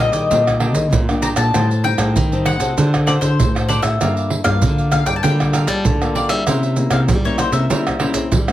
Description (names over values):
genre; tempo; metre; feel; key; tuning
samba and choro; 97 BPM; 4/4; straight; unclear; A4 = 440 Hz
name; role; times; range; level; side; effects
mandolin; melody; 0.0-8.5 s; C5 to Bb5; -22 LUFS; left 3 dB; none
cavaquinho; accompaniment; 0.0-8.5 s; D4 to A5; -28 LUFS; right 4 dB; none
nylon-string guitar; accompaniment; 0.0-8.5 s; A2 to A4; -24 LUFS; left 3 dB; none
nylon-string guitar; bass; 0.0-8.5 s; G2 to C4; -19 LUFS; equal; none
maracas, surdo, pandeiro and tamborim; percussion; 0.1-8.5 s; none; -19 LUFS; right 2 dB; none
room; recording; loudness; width
moderate studio reverb, RT60 0.5 s; none; -14 LUFS; side -13 dB against mid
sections
0.0-8.5 A section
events
none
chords
0.0 Ebmaj7; 1.5 Am7b5; 2.8 D7; 4.0 Gm9; 6.5 C7b9